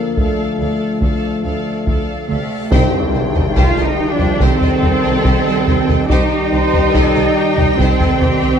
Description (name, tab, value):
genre	cinematic, epic orchestral film score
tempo	71 BPM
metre	4/4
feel	straight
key	unclear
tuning	A4 = 435 Hz
part	clear symphonic violin section	melody	0.0-8.6 s	F5 to G5	-26 LUFS	left 3 dB	none
part	rich symphonic violin section	second line	0.0-8.5 s	G4 to Eb5	-26 LUFS	left 3 dB	none
part	clear symphonic viola section	accompaniment	0.0-8.6 s	G4 to C5	-24 LUFS	right 1 dB	none
part	clear trombone section	sustained chords	0.0-8.6 s	D3 to G3	-24 LUFS	right 5 dB	none
part	dark French horn section	sustained chords	0.0-8.6 s	C3 to Bb3	-21 LUFS	left 3 dB	none
part	reverse cymbal and sub drop	sound effects	2.6-6.1 s	none	-28 LUFS	equal	none
part	clear symphonic double bass section	bass	0.2-8.5 s	C2 to D2	-21 LUFS	right 3 dB	none
part	rich symphonic cello section	bass	0.2-8.6 s	D2 to F4	-19 LUFS	right 2 dB	none
part	solo taiko drums	drums	0.2-8.6 s	none	-18 LUFS	equal	none
part	tam-tam	percussion	2.7-6.1 s	none	-25 LUFS	left 4 dB	none
room	moderate scoring stage reverb, RT60 1.7 s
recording	dark, warm production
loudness	-13 LUFS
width	side -8 dB against mid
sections	0.0-2.7 A section; 2.7-8.6 A section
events	reverse cymbal 2.6; band accent 2.7-3.6; impact 2.7-6.1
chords	0.0 Dm; 2.7 Cm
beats	0.17 1.02 1.86 | 2.71 3.56 4.41 5.25 | 6.10 6.95 7.79